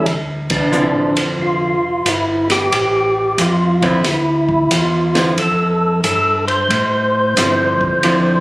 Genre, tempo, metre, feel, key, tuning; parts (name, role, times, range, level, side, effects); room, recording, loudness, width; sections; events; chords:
soul jazz organ trio; 90 BPM; 4/4; swing 66% on 8ths; D minor; A4 = 440 Hz
percussive tonewheel organ; melody; 0.0-8.4 s; D4 to C5; -16 LUFS; equal; slow rotary speaker, overdrive, chorus vibrato
mellow tonewheel organ; bass; 0.0-8.4 s; F1 to A2; -20 LUFS; equal; chorus vibrato, slow rotary speaker
open jazz drum kit; drums; 0.1-8.2 s; hi-hat, kick drum, ride cymbal, snare drum; -21 LUFS; right 1 dB
archtop guitar, miked and amplified; accompaniment; 0.7-8.4 s; D3 to E4; -18 LUFS; right 1 dB
moderate large studio reverb, RT60 1.3 s; recorded on a phone in the room, club reverb, compression; -13 LUFS; side -20 dB against mid
0.1-8.4 A section
band accent 0.4-0.7
0.1 Dm9